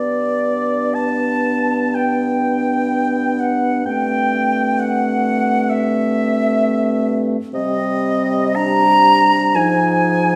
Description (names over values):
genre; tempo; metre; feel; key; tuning
classical, slow romantic movement for wind quintet; 50-66 BPM; 4/4; rubato; unclear; A4 = 440 Hz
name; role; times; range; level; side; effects
hollow concert flute; melody; 0.0-10.4 s; D5 to Bb5; -23 LUFS; equal; none
warm oboe; second line; 0.0-10.4 s; D5 to Bb5; -23 LUFS; equal; none
dark clarinet; accompaniment; 0.0-10.4 s; C4 to Eb4; -25 LUFS; equal; none
warm French horn; accompaniment; 0.0-10.4 s; F3 to B3; -24 LUFS; equal; none
mellow bassoon; bass; 0.0-10.4 s; G2 to C3; -26 LUFS; equal; none
room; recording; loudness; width
wet stone room reverb, RT60 1.3 s; none; -17 LUFS; mono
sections
0.0-10.4 A section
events
none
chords
0.0 G; 3.9 Am7/G; 7.6 Cm; 9.6 Fm7/Ab